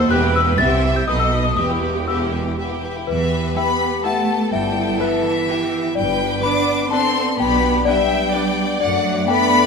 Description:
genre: cinematic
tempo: 125 BPM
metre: 3/4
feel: straight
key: E minor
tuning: A4 = 440 Hz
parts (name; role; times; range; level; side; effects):
- clear studio violin section; melody; 0.0-9.7 s; E5 to D6; -23 LUFS; left 3 dB; none
- small celesta; melody; 0.0-9.7 s; B4 to A6; -22 LUFS; left 7 dB; none
- rich studio violin section; second line; 0.0-9.7 s; D#4 to E5; -26 LUFS; left 1 dB; none
- rich studio viola section; accompaniment; 0.0-9.4 s; D4 to E5; -27 LUFS; right 1 dB; none
- rich studio cello section; bass; 0.0-9.7 s; E2 to D4; -23 LUFS; right 3 dB; none
- rich studio double bass section; bass; 0.0-9.2 s; E1 to F#2; -25 LUFS; right 3 dB; none
- warm French horn section; sustained chords; 0.1-9.7 s; A3 to A4; -24 LUFS; left 2 dB; none
room: wet scoring stage reverb, RT60 1.7 s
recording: none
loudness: -16 LUFS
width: side -5 dB against mid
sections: 0.0-3.1 A section; 3.1-9.7 B section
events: none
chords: 0.1 Em; 0.6 Cmaj7; 1.1 B7; 1.6 Em; 4.5 Em/G; 6.0 G; 7.4 G/B; 8.8 D/F#

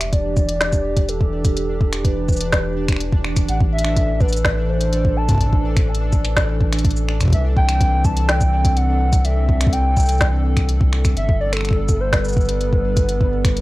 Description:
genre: IDM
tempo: 125 BPM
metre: 4/4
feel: straight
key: E minor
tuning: A4 = 440 Hz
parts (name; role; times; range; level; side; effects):
- warbly nostalgic lead; melody; 0.0-13.6 s; A4 to A5; -24 LUFS; equal; chorus, analog delay
- hollow soft pad; sustained chords; 0.0-13.6 s; E3 to A4; -26 LUFS; equal; chorus, vintage 12-bit sampler grit, sidechain pumping
- round analog bass; bass; 0.0-13.6 s; E1 to C2; -20 LUFS; equal; none
- organic electronic drum kit; drums; 0.0-13.6 s; finger snaps, hi-hat, shaker, snare drum; -24 LUFS; equal; overdrive, small room reverb
- pulsing gated texture; texture; 0.0-13.6 s; D4 to D5; -34 LUFS; equal; chorus, built-in reverb
- electronic kick drum; drums; 0.1-13.5 s; none; -18 LUFS; equal; overdrive, small room reverb
room: little or no reverb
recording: dry, gritty hardware recording, cassette tape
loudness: -16 LUFS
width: side -18 dB against mid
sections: 0.0-13.6 A section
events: none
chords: 0.0 Em7; 3.5 Asus4; 7.3 C6; 11.2 Gadd9

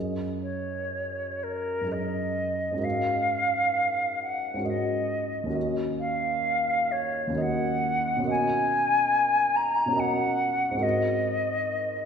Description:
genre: classical, impressionist duo for flute and grand piano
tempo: 56-73 BPM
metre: 3/4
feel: rubato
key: unclear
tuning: A4 = 441 Hz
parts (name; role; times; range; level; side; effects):
- dark concert grand piano; accompaniment; 0.0-12.1 s; D#2 to D#5; -30 LUFS; equal; none
- silver concert flute; melody; 0.4-12.1 s; A#4 to A#5; -25 LUFS; equal; none
room: wet scoring stage reverb, RT60 1.6 s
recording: minimal, uncompressed stereo recording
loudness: -24 LUFS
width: side -7 dB against mid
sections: 0.0-12.1 A section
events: none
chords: 0.0 F#69; 2.8 G#9sus4; 5.6 D#m9; 8.3 Bmaj9; 10.8 G#9

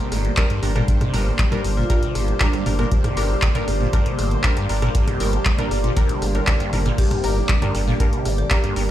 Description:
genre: acid house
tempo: 118 BPM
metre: 4/4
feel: straight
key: G minor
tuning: A4 = 439 Hz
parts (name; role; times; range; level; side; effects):
- lush unison pad; sustained chords; 0.0-8.9 s; D3 to C5; -28 LUFS; equal; chorus, sidechain pumping
- liquid acid bass; riff; 0.0-8.8 s; G2 to G3; -26 LUFS; equal; phaser, overdrive, lush chorus, vintage 12-bit sampler grit, tape echo
- warbly tape-like pad; texture; 0.0-8.9 s; G4 to D6; -30 LUFS; left 1 dB; chorus, built-in reverb, sidechain pumping
- saturated sub bass; bass; 0.1-8.9 s; G1; -22 LUFS; equal; sidechain pumping
- punchy analog drum machine; drums; 0.1-8.9 s; crash cymbal, handclaps, hi-hat, rim click, toms; -26 LUFS; equal; overdrive
- filtered dub chord stab; stabs; 0.4-8.9 s; G3 to Bb4; -29 LUFS; right 1 dB; wide subtle chorus, tape echo
- electronic kick drum; drums; 0.4-8.6 s; none; -21 LUFS; equal; none
- vibraphone with medium mallets; melody; 1.8-2.6, 7.0-8.8 s; D4 to G4; -31 LUFS; equal; ping-pong delay
room: light reverb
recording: played on a big sound system in a bare room, stone room reverb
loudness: -17 LUFS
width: side -12 dB against mid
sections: 0.0-8.9 A section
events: none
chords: 0.0 Gm

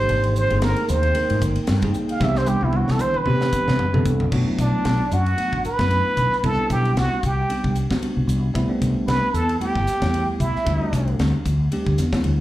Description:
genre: electric jazz fusion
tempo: 114 BPM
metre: 4/4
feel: swing 56% on 16ths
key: C lydian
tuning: A4 = 440 Hz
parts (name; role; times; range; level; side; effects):
- trumpet with plunger mute; melody; 0.0-11.2 s; D4 to F5; -23 LUFS; right 2 dB; slapback echo
- bell-like tine electric piano; accompaniment; 0.0-12.4 s; E3 to Bb4; -26 LUFS; equal; none
- ethereal airy pad; sustained chords; 0.0-4.3 s; C3 to G5; -35 LUFS; equal; none
- mellow fretless electric bass; bass; 0.0-12.4 s; G1 to C3; -21 LUFS; equal; wide subtle chorus
- crisp fusion drum kit; drums; 0.1-12.4 s; crash cymbal, hi-hat, kick drum, ride cymbal, snare drum, toms; -28 LUFS; equal; none
- breathy mellow silver concert flute; second line; 4.6-11.2 s; D5 to B5; -31 LUFS; equal; none
room: small room ambience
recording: live gig heard through the venue's PA, club reverb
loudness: -18 LUFS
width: side -15 dB against mid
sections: 0.0-4.3 A section; 4.3-12.4 B section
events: muted trumpet solo 0.0-4.3; drum fill 2.2-4.3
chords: 0.0 Abmaj9; 2.2 Cmaj7; 4.3 Bm7; 6.4 Cmaj9; 8.6 Am9/C; 10.7 D9sus4

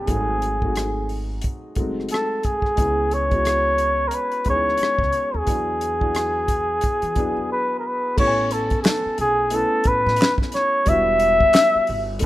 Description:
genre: R&B, neo-soul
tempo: 89 BPM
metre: 4/4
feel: swing 60% on 16ths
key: A major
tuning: A4 = 440 Hz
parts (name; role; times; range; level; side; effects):
- breathy flugelhorn; melody; 0.0-12.2 s; G#4 to E5; -19 LUFS; equal; slapback echo
- dark grand piano; accompaniment; 0.0-12.3 s; F#3 to G#5; -28 LUFS; left 1 dB; none
- upright bass; bass; 0.0-12.3 s; E1 to E3; -29 LUFS; equal; none
- warm soul drum kit; drums; 0.1-12.3 s; crash cymbal, handclaps, hi-hat, kick drum, rim click, snare drum; -22 LUFS; equal; none
room: light reverb, small room ambience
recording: rough home demo mix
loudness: -18 LUFS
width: side -15 dB against mid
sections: 0.0-8.2 A section; 8.2-12.3 B section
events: silent gap 7.5-8.2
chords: 0.1 G#7b9; 2.8 C#m7; 5.5 E9; 8.2 Amaj9; 10.9 Em7

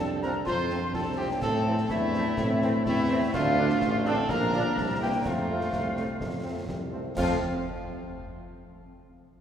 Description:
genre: military-style march for wind band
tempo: 125 BPM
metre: 2/4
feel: straight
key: F major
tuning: A4 = 441 Hz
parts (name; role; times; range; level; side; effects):
- warm cornet; melody; 0.0-7.4 s; E4 to C5; -33 LUFS; right 1 dB; none
- clear woodwind section; second line; 0.0-7.4 s; A3 to F5; -35 LUFS; left 2 dB; none
- flute section; second line; 0.0-7.4 s; E5 to C6; -33 LUFS; left 2 dB; none
- mellow euphonium; second line; 0.0-6.9 s; G3 to D4; -33 LUFS; right 2 dB; none
- warm tuba; bass; 0.0-7.4 s; A1 to A2; -30 LUFS; right 1 dB; none
- dark French horn section; accompaniment; 0.2-7.4 s; D3 to D4; -38 LUFS; left 2 dB; none
- warm trombone section; sustained chords; 0.2-7.4 s; D3 to D4; -36 LUFS; right 2 dB; none
- concert snare drum, concert bass drum and clash cymbals; drums; 0.2-7.4 s; none; -37 LUFS; left 1 dB; none
room: wet church reverb, RT60 3.7 s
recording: recorded in a church or concert hall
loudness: -24 LUFS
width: side -9 dB against mid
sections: 0.0-7.2 A section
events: none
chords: 0.0 F; 1.4 Am; 3.3 Dm; 4.3 Bb; 4.8 C; 5.3 F

